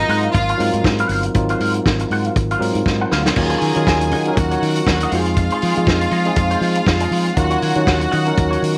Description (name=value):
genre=disco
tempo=120 BPM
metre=4/4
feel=swing 56% on 16ths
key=Eb dorian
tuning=A4 = 440 Hz
part: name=clear studio string section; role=second line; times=0.0-8.8 s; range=Eb4 to Ab5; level=-24 LUFS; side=equal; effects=none
part: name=clean electric guitar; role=accompaniment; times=0.0-8.7 s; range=Eb4 to Gb5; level=-28 LUFS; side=equal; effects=wah
part: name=mellow tine electric piano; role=accompaniment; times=0.0-8.8 s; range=Gb3 to Db5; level=-23 LUFS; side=equal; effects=overdrive
part: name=fingered electric bass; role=bass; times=0.0-8.8 s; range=G1 to F3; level=-23 LUFS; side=equal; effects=none
part: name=warm soul drum kit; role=drums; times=0.1-8.8 s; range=crash cymbal, hi-hat, kick drum, snare drum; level=-23 LUFS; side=equal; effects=none
room=light reverb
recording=none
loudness=-17 LUFS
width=mono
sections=0.0-3.4 A section; 3.4-8.8 B section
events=drum fill 2.9-3.4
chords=0.0 Ab13; 3.4 Ebm7; 5.1 Fm7; 7.4 Ebm7